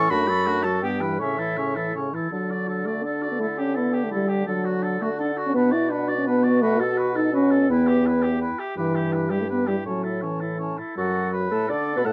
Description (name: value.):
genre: quick classical-period movement for wind quintet.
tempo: 167 BPM.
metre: 3/4.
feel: straight.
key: D major.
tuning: A4 = 440 Hz.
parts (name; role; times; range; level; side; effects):
silver concert flute; melody; 0.0-12.1 s; A4 to D6; -34 LUFS; equal; none.
clear oboe; second line; 0.0-12.1 s; F#4 to F#5; -32 LUFS; equal; none.
mellow French horn; accompaniment; 0.0-12.1 s; C#3 to F#4; -26 LUFS; equal; none.
warm clarinet; accompaniment; 0.0-12.1 s; G3 to D5; -35 LUFS; equal; none.
mellow bassoon; bass; 0.0-12.1 s; E2 to D3; -31 LUFS; equal; none.
room: light reverb.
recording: dark, warm production.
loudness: -23 LUFS.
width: mono.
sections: 0.0-2.3 A section; 2.3-11.0 B section; 11.0-12.1 B section.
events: none.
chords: 0.1 D/F#; 0.8 Em/G; 1.2 A; 2.3 D; 3.4 A7/D; 4.5 D; 5.5 Bm; 6.6 B7; 7.7 Em; 8.8 Em/G; 9.9 A; 11.0 D/F#.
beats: | 0.11 0.47 0.83 | 1.21 1.58 1.95 | 2.32 2.68 3.04 | 3.40 3.76 4.12 | 4.47 4.83 5.19 | 5.55 5.90 6.26 | 6.62 6.98 7.33 | 7.69 8.05 8.40 | 8.76 9.13 9.49 | 9.86 10.23 10.60 | 10.97 11.33 11.69 | 12.05.